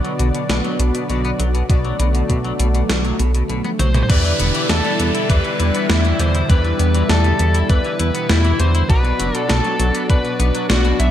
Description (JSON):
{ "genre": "synthwave", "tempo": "100 BPM", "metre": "4/4", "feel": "straight", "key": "E minor", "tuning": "A4 = 439 Hz", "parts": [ { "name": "lush unison pad", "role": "sustained chords", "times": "0.0-11.1 s", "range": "B2 to E4", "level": "-24 LUFS", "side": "right 1 dB", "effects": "chorus, sidechain pumping" }, { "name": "clean electric guitar", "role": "riff", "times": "0.0-11.1 s", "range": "B2 to E4", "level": "-28 LUFS", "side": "left 4 dB", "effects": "lush chorus, tape echo" }, { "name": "analog synth brass", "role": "stabs", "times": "0.0-11.1 s", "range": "B2 to D5", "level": "-26 LUFS", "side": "left 4 dB", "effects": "chorus, digital delay" }, { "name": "gated 80s digital drum machine", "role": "drums", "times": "0.0-11.1 s", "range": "crash cymbal, hi-hat, snare drum, toms", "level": "-23 LUFS", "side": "equal", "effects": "gated reverb, gated reverb snare" }, { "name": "chorused synth bass", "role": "bass", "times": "0.2-11.1 s", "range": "E1 to E2", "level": "-17 LUFS", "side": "equal", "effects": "sidechain pumping" }, { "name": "electronic kick drum", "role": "drums", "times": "1.7-10.2 s", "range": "none", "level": "-15 LUFS", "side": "equal", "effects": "none" }, { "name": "biting lead guitar", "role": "melody", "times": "3.8-11.1 s", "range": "E4 to E5", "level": "-23 LUFS", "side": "left 1 dB", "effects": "overdrive, ping-pong delay" }, { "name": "downlifter", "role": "sound effects", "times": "4.1-8.9 s", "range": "none", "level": "-27 LUFS", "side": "equal", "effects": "none" } ], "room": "light reverb, digital ambience", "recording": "none", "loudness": "-15 LUFS", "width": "side -11 dB against mid", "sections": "0.0-4.1 A section; 4.1-11.1 B section", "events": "drum fill 3.6-4.1", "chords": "0.0 Bm; 4.1 Em7; 8.9 Bm" }